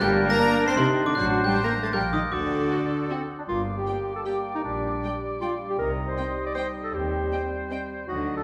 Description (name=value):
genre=cinematic, playful, whimsical film cue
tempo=157 BPM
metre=3/4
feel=straight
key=G minor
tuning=A4 = 440 Hz
part: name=glockenspiel with soft plastic mallets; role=melody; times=0.0-3.1 s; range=C6 to C7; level=-31 LUFS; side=equal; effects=none
part: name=clear clarinet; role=second line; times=0.0-8.4 s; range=C4 to D5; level=-33 LUFS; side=equal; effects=none
part: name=clear oboe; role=second line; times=0.0-8.4 s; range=A4 to Eb5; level=-36 LUFS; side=equal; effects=none
part: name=mellow hollow flute section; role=second line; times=0.0-8.4 s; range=C5 to D6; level=-38 LUFS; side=equal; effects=none
part: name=warm symphonic violin section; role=second line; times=0.0-7.8 s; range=C5 to C6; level=-39 LUFS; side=equal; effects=none
part: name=mellow bassoon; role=accompaniment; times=0.0-8.4 s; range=F#3 to F#4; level=-36 LUFS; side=equal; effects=none
part: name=warm chamber viola section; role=accompaniment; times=0.0-7.8 s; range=G3 to C5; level=-36 LUFS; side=equal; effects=none
part: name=dark French horn section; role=sustained chords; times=0.0-8.4 s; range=C3 to Eb4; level=-35 LUFS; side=equal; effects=none
part: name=rich chamber cello section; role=bass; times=0.0-8.4 s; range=G2 to C4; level=-33 LUFS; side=equal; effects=none
part: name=rich studio double bass section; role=bass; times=0.0-8.4 s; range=G1 to Eb2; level=-36 LUFS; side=equal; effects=none
part: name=rich chamber violin section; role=melody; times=0.4-7.8 s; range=F#4 to G5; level=-43 LUFS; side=equal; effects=none
room=wet recital hall reverb, RT60 1.8 s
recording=none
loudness=-26 LUFS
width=mono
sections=0.0-3.5 A section; 3.5-8.4 A section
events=none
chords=0.0 Gm; 1.2 D7/A; 1.9 Gm/Bb; 2.3 D; 3.5 Gm; 4.6 Gm/Bb; 5.8 Cm; 6.9 Cm/Eb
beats=| 0.01 0.39 0.78 | 1.16 1.54 1.93 | 2.32 2.71 3.10 | 3.49 3.88 4.26 | 4.64 5.03 5.41 | 5.79 6.17 6.56 | 6.94 7.32 7.70 | 8.08